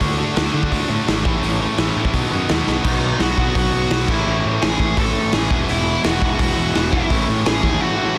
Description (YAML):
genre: punk rock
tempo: 169 BPM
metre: 4/4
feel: straight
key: E major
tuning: A4 = 441 Hz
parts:
  - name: sludgy distorted guitar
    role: riff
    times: 0.0-8.2 s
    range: A2 to F#4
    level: -26 LUFS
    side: equal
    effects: overdrive
  - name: tight distorted guitar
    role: riff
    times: 0.0-8.2 s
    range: E2 to D4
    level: -27 LUFS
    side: equal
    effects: distortion
  - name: fuzz picked electric bass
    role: bass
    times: 0.0-7.8 s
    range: E1 to D3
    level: -25 LUFS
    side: equal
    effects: overdrive
  - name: raw garage drum kit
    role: drums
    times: 0.0-7.7 s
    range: crash cymbal, hi-hat, kick drum, snare drum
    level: -23 LUFS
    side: equal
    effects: none
  - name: smooth overdriven lead guitar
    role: melody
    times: 2.9-8.2 s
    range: D#4 to A5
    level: -25 LUFS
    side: equal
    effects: tape echo
room: light reverb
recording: dense, heavily limited modern master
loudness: -18 LUFS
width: mono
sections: 0.0-2.8 A section; 2.8-8.2 B section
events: drum fill 2.7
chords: 0.0 D; 1.2 A; 2.1 B; 4.1 A; 5.5 E; 7.1 A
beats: | 0.01 0.36 0.72 1.07 | 1.43 1.78 2.14 2.49 | 2.85 3.20 3.56 3.91 | 4.26 4.62 4.97 5.33 | 5.68 6.04 6.39 6.75 | 7.10 7.46 7.81 8.16